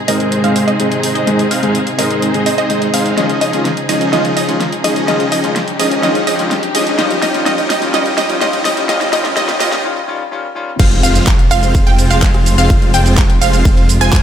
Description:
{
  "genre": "EDM, festival progressive house",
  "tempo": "126 BPM",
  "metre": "4/4",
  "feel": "straight",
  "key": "F minor",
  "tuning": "A4 = 440 Hz",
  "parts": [
    { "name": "rich studio string section", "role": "sustained chords", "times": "0.0-14.2 s", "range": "Bb2 to Ab4", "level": "-22 LUFS", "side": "left 1 dB", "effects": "sidechain pumping, low-pass filter" },
    { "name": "riser and impact", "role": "sound effects", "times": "3.9-12.7 s", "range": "none", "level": "-27 LUFS", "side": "equal", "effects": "none" },
    { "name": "warm grand piano", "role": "accompaniment", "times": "0.1-10.7 s", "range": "Ab2 to Bb4", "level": "-20 LUFS", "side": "left 2 dB", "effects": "sidechain pumping, digital delay" },
    { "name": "wide unison pluck", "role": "arpeggios", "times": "0.1-14.2 s", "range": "Eb5 to Ab5", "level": "-19 LUFS", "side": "moving between left 4 dB and right 6 dB", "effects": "auto-pan, sidechain pumping, digital delay" },
    { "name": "supersaw chords", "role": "riff", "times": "0.1-14.2 s", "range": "F3 to Ab5", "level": "-17 LUFS", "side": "equal", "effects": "sidechain pumping, low-pass filter, digital delay" },
    { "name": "pop drum kit", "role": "drums", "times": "0.1-14.2 s", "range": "crash cymbal, handclaps, hi-hat, ride cymbal, rim click, shaker, snare drum", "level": "-21 LUFS", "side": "right 1 dB", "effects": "overdrive" },
    { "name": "detuned saw bass", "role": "bass", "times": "10.8-14.2 s", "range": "F1 to F2", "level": "-14 LUFS", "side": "equal", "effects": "sidechain pumping" },
    { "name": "electronic kick drum", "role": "drums", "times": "10.8-14.2 s", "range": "none", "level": "-12 LUFS", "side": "equal", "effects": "none" }
  ],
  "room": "moderate concert hall reverb, RT60 1.9 s",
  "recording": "high-pass filter",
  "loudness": "-11 LUFS",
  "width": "side -9 dB against mid",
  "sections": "0.0-10.8 A section; 10.8-14.2 B section",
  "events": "build-up 0.0-10.8; filter sweep on supersaw synth 0.0-10.8; filter sweep on synth pluck 0.0-10.8; drum fill 3.2-9.8; break 9.8-10.8; drop 10.8-14.2; impact 10.8-12.7",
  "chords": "0.0 Ab; 3.2 Dbadd9; 7.0 Eb; 10.8 Fm"
}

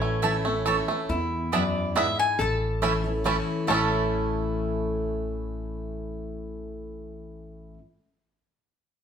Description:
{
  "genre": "bluegrass",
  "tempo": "139 BPM",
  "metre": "3/4",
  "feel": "straight",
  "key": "A major",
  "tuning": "A4 = 440 Hz",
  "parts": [
    { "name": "bluegrass banjo", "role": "melody", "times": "0.0-7.8 s", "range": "E3 to A4", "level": "-29 LUFS", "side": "right 5 dB", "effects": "none" },
    { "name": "mandolin", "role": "melody", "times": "0.0-7.7 s", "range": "C#5 to A5", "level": "-29 LUFS", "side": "left 2 dB", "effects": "none" },
    { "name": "lap resonator guitar", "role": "second line", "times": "0.0-7.7 s", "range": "C#4 to C#5", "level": "-34 LUFS", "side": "left 2 dB", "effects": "none" },
    { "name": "picked steel-string acoustic guitar", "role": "accompaniment", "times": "0.0-7.8 s", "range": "E2 to E4", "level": "-30 LUFS", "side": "left 2 dB", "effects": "none" },
    { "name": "upright bass", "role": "bass", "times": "0.0-7.7 s", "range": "A1 to E2", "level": "-32 LUFS", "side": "equal", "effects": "none" },
    { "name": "mandolin", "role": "stabs", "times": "0.2-7.8 s", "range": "A3 to B5", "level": "-31 LUFS", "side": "right 5 dB", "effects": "none" }
  ],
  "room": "moderate large studio reverb, RT60 0.9 s",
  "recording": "band playing live in one room",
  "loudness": "-24 LUFS",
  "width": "side -8 dB against mid",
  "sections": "0.0-1.1 A section; 1.1-3.7 B section; 3.7-6.3 C section",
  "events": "none",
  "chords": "0.0 A; 1.1 E7; 2.4 A"
}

